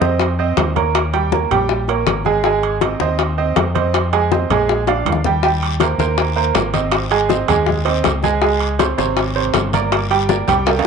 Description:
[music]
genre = latin, salsa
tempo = 161 BPM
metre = 4/4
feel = straight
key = unclear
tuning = A4 = 439 Hz
[part]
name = bright upright piano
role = accompaniment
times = 0.0-10.9 s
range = C3 to Ab5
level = -18 LUFS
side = right 7 dB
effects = none
[part]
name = fingered electric bass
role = bass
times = 0.0-10.9 s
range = G1 to F2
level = -21 LUFS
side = left 1 dB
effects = none
[part]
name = congas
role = percussion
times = 0.0-10.9 s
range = none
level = -24 LUFS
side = left 10 dB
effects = none
[part]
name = bongos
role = percussion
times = 0.2-10.9 s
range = none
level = -21 LUFS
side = left 12 dB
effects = none
[part]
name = timbales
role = percussion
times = 0.2-10.9 s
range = none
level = -24 LUFS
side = right 9 dB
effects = none
[part]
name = guiro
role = percussion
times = 5.4-10.9 s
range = none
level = -31 LUFS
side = left 15 dB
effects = none
[sound]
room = wet spring reverb, RT60 1.2 s, small room ambience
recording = 1960s-style stereo with parts hard left and right, nothing above 10.8 kHz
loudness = -14 LUFS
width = side -6 dB against mid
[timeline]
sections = 0.0-10.9 A section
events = drum fill 4.9-5.4, 10.7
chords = 0.0 F7(no3); 0.9 Eb7; 2.4 Ab6; 3.9 Fm7; 4.7 Bb7; 5.4 Eb6; 6.9 Ab; 8.4 Db5; 9.9 Gm

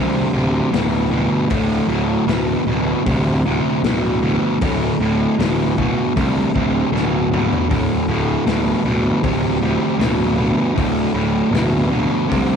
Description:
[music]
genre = blues rock power trio and southern rock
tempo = 78 BPM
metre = 4/4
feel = straight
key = unclear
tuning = A4 = 439 Hz
[part]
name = sludgy distorted guitar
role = riff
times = 0.0-12.6 s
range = D2 to C3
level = -17 LUFS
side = equal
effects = overdrive
[part]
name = fuzz picked electric bass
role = bass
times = 0.0-12.6 s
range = D1 to C2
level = -22 LUFS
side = equal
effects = overdrive, tube saturation
[part]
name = raw garage drum kit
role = drums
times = 0.7-12.5 s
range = hi-hat, kick drum, snare drum, toms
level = -25 LUFS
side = left 4 dB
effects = none
[sound]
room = light reverb, small room ambience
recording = 1960s-style stereo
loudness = -16 LUFS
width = side -7 dB against mid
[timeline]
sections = 0.0-12.6 A section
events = drum fill 6.9-7.7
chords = 0.0 D5

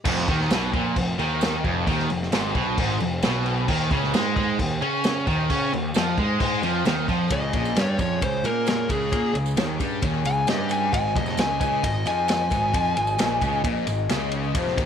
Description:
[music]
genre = classic rock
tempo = 132 BPM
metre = 4/4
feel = straight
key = unclear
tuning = A4 = 440 Hz
[part]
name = biting overdriven guitar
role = riff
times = 0.0-7.3 s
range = F2 to Db4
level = -26 LUFS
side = right 1 dB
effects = none
[part]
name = sludgy distorted guitar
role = riff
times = 0.0-14.9 s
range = F2 to Db4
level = -30 LUFS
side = left 8 dB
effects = overdrive
[part]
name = sludgy distorted guitar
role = riff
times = 0.1-14.9 s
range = F2 to Db4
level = -30 LUFS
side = right 10 dB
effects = overdrive
[part]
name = fuzz picked electric bass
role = bass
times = 0.1-14.9 s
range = F1 to Db3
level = -29 LUFS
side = equal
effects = overdrive
[part]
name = vintage drum kit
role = drums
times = 0.1-14.9 s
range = crash cymbal, kick drum, ride cymbal, snare drum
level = -26 LUFS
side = equal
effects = none
[part]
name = tambourine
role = percussion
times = 0.5-14.8 s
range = none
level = -41 LUFS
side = right 14 dB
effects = none
[part]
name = fuzz lead guitar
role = melody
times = 7.3-13.6 s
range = Ab4 to Ab5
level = -25 LUFS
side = left 1 dB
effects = distortion, slapback echo
[part]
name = picked twelve-string acoustic guitar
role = accompaniment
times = 7.3-14.9 s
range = Db3 to Eb5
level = -30 LUFS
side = left 10 dB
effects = none
[sound]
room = wet spring reverb, RT60 1.1 s, small room ambience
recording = 1960s-style stereo with parts hard left and right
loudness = -21 LUFS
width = side -8 dB against mid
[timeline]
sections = 0.1-7.3 A section; 7.3-14.9 B section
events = lead electric guitar solo 7.3-14.9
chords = 0.1 Fm; 3.7 Dbadd9; 7.3 Db5; 10.9 Ab5

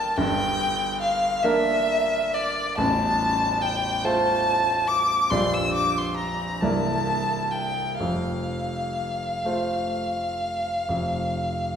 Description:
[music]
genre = classical, romantic duo for violin and grand piano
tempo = 41-49 BPM (dotted quarters)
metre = 12/8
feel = rubato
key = F major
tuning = A4 = 440 Hz
[part]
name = clear violin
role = melody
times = 0.0-11.8 s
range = D5 to E6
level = -24 LUFS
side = left 1 dB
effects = none
[part]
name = bright concert grand piano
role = accompaniment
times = 0.0-11.8 s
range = A0 to D5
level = -26 LUFS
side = right 1 dB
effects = none
[sound]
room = wet recital hall reverb, RT60 1.7 s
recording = heard from further back in the room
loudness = -22 LUFS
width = side -8 dB against mid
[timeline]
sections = 0.0-11.8 A section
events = none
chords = 0.0 Gm; 2.8 F/A; 5.3 Gm7/Bb; 6.6 C9; 8.0 F

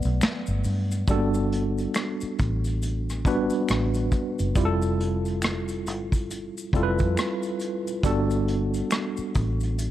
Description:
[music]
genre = R&B, neo-soul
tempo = 69 BPM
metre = 4/4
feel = swing 60% on 16ths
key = G major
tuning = A4 = 440 Hz
[part]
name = tine electric piano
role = accompaniment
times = 0.0-9.9 s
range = F#3 to D5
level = -26 LUFS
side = right 1 dB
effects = overdrive, fast stereo tremolo
[part]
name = vintage muted fingered electric bass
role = bass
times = 0.0-9.9 s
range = F1 to G2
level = -27 LUFS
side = equal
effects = none
[part]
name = vintage brush drum kit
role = drums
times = 0.0-9.9 s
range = hi-hat, kick drum, rim click, snare drum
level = -26 LUFS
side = equal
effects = none
[part]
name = maracas and finger snaps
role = percussion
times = 0.0-9.9 s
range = none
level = -39 LUFS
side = left 4 dB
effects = none
[sound]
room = studio ambience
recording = none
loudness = -23 LUFS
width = side -13 dB against mid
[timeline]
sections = 0.0-1.1 A section; 1.1-9.9 B section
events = break 0.0-1.1; tine electric piano solo 0.0-1.1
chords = 0.0 Gmaj9; 4.6 Fmaj9; 8.0 Gmaj9

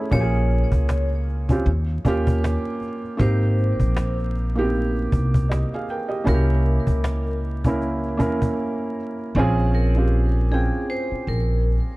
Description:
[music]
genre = lo-fi hip hop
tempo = 78 BPM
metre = 4/4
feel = swing 58% on 16ths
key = unclear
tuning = A4 = 440 Hz
[part]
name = felt-muted upright piano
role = accompaniment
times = 0.0-12.0 s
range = A3 to G5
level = -25 LUFS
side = right 2 dB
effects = cassette tape, low-pass filter
[part]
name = vibraphone with medium hard mallets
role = melody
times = 0.1-11.6 s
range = Ab4 to Db5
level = -32 LUFS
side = left 2 dB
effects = low-pass filter, tape echo
[part]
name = upright bass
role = bass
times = 0.1-11.8 s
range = Ab1 to E2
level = -21 LUFS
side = equal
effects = none
[part]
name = cajon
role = drums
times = 0.1-8.6 s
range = none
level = -23 LUFS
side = equal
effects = none
[sound]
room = studio ambience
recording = dark, warm production, vinyl crackle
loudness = -19 LUFS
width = side -20 dB against mid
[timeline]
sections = 0.0-9.3 A section; 9.3-12.0 B section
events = break 8.6-9.3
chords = 0.1 Bbm7; 1.7 Eb9; 3.2 Abmaj9; 6.3 C7b9; 9.3 Bbm7

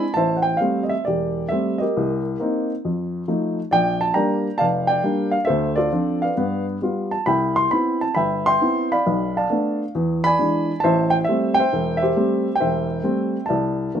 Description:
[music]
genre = solo jazz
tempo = 135 BPM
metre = 4/4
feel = swing 67% on 8ths, rubato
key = A minor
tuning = A4 = 441 Hz
[part]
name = warm upright piano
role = solo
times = 0.0-14.0 s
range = E1 to C6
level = -18 LUFS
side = equal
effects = none
[sound]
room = light reverb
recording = minimal, uncompressed stereo recording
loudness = -18 LUFS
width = side -8 dB against mid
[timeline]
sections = 0.2-14.0 A section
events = none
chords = 0.2 Am7; 2.0 Cm7; 2.8 F7; 3.7 Bb6; 5.5 Dm7; 6.4 G7; 7.3 Cmaj7; 9.1 Bm7b5; 10.0 E7; 10.8 Am7; 13.5 C69

